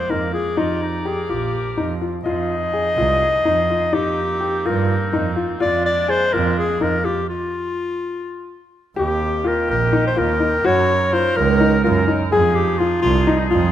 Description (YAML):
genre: contemporary instrumental, chamber music in an uneven meter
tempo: 250 BPM (eighths)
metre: 7/8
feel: straight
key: F dorian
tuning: A4 = 440 Hz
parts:
  - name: warm clarinet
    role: melody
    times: 0.0-13.7 s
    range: Eb4 to Eb5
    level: -20 LUFS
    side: left 2 dB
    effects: none
  - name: clear woodwind section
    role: sustained chords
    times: 0.0-13.7 s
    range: Eb3 to D5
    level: -28 LUFS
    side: left 1 dB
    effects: none
  - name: dark baby grand piano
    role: arpeggios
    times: 0.1-13.6 s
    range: Eb4 to Ab4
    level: -22 LUFS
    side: left 3 dB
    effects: none
  - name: clear double bass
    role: bass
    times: 0.1-13.7 s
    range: Bb1 to G2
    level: -22 LUFS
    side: right 5 dB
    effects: none
room: light reverb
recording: close, detailed microphones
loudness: -16 LUFS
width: side -11 dB against mid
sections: 0.0-9.0 A section; 9.0-13.7 B section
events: stop 7.3-9.0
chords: 0.0 Bb7/F; 0.6 Ebmaj9; 2.3 Fm7; 3.9 Cm7/F; 5.6 Bb7/F; 7.3 N.C.; 9.0 Eb6; 10.6 Gb6; 12.3 Fm7